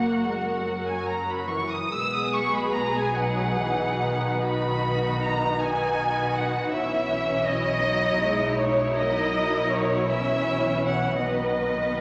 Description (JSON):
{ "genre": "classical, slow romantic movement for string orchestra", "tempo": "45-55 BPM (dotted quarters)", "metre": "12/8", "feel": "rubato", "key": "B major", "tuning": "A4 = 438 Hz", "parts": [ { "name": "muted chamber violin section", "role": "melody", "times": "0.0-11.2 s", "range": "C#5 to E6", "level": "-29 LUFS", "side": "equal", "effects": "none" }, { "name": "muted chamber violin section", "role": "second line", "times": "0.0-12.0 s", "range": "E4 to D#5", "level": "-31 LUFS", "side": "equal", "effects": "none" }, { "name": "muted chamber viola section", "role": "accompaniment", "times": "0.0-12.0 s", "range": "D#3 to D#4", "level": "-31 LUFS", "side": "equal", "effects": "none" }, { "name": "muted chamber cello section", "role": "bass", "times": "0.0-12.0 s", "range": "F#2 to B2", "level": "-38 LUFS", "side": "equal", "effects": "none" }, { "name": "muted chamber double bass section", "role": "bass", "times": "0.0-12.0 s", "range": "F#1 to B1", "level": "-36 LUFS", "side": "equal", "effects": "none" } ], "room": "wet scoring stage reverb, RT60 2.1 s", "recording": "none", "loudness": "-25 LUFS", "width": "mono", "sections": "0.0-12.0 A section", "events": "none", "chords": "0.0 F#; 1.9 B; 6.7 F#7/B; 11.2 B", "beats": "0.67 | 1.93 3.17 4.45 5.61 | 6.73 7.85 8.98 10.10 | 11.23" }